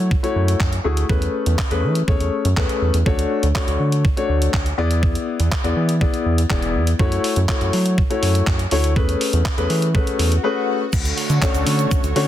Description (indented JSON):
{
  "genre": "dance-pop",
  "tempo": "122 BPM",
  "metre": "4/4",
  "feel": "straight",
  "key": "unclear",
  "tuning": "A4 = 438 Hz",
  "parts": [
    { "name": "warm concert grand piano", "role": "accompaniment", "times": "0.0-12.3 s", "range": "A3 to D5", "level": "-22 LUFS", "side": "left 4 dB", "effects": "sidechain pumping" },
    { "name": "round analog bass", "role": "bass", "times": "0.0-12.3 s", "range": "E1 to F#3", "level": "-19 LUFS", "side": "right 1 dB", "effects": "sidechain pumping" },
    { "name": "detuned 8-bit digital drum machine", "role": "drums", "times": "0.1-12.3 s", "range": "crash cymbal, handclaps, hi-hat, kick drum", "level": "-21 LUFS", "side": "right 1 dB", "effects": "soft clipping on snare" },
    { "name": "swell", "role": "sound effects", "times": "9.7-10.9 s", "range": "none", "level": "-31 LUFS", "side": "left 5 dB", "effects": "none" },
    { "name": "lush unison pad", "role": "sustained chords", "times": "10.9-12.3 s", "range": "D3 to C#5", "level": "-26 LUFS", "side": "right 3 dB", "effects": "chorus, sidechain pumping" },
    { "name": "tube shaker", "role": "percussion", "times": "10.9-12.2 s", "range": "none", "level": "-36 LUFS", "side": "right 19 dB", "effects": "none" }
  ],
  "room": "light reverb",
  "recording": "dense, heavily limited modern master",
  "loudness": "-16 LUFS",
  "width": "side -12 dB against mid",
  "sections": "0.0-10.9 A section; 10.9-12.3 B section",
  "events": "swell 9.7-10.9; break 10.4-10.9",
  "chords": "0.0 F#m7; 1.1 Amaj9/E; 3.1 Dmaj7; 4.8 E7; 7.0 F#m7; 9.0 Amaj9/E; 10.9 Dmaj7"
}